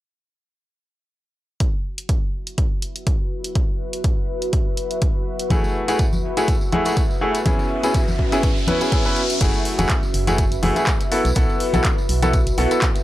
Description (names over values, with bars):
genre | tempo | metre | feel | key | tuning
piano house | 123 BPM | 4/4 | swing 55% on 16ths | F# minor | A4 = 441 Hz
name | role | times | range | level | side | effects
electronic kick drum | drums | 1.6-12.9 s | none | -20 LUFS | equal | none
punchy analog drum machine | drums | 1.6-13.0 s | crash cymbal, handclaps, hi-hat | -28 LUFS | equal | none
deep dark ambient pad | texture | 3.0-13.0 s | C#4 to E5 | -27 LUFS | equal | chorus, built-in reverb, sidechain pumping
clear concert grand piano | riff | 5.5-12.9 s | A3 to B4 | -22 LUFS | equal | sidechain pumping, analog delay
congas and tambourine | percussion | 5.5-13.0 s | none | -28 LUFS | left 2 dB | none
riser | sound effects | 7.2-9.4 s | none | -29 LUFS | equal | none
organ-like FM bass | bass | 9.4-12.7 s | F#1 to B1 | -21 LUFS | equal | sidechain pumping
room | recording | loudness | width
digital ambience | dry, gritty hardware recording, cassette tape | -18 LUFS | side -15 dB against mid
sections
1.6-9.4 A section; 9.4-13.0 B section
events
riser 7.2-9.4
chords
1.6 F#7sus4; 5.3 F#m9; 7.5 C#m7; 9.4 F#m9; 11.1 B7sus4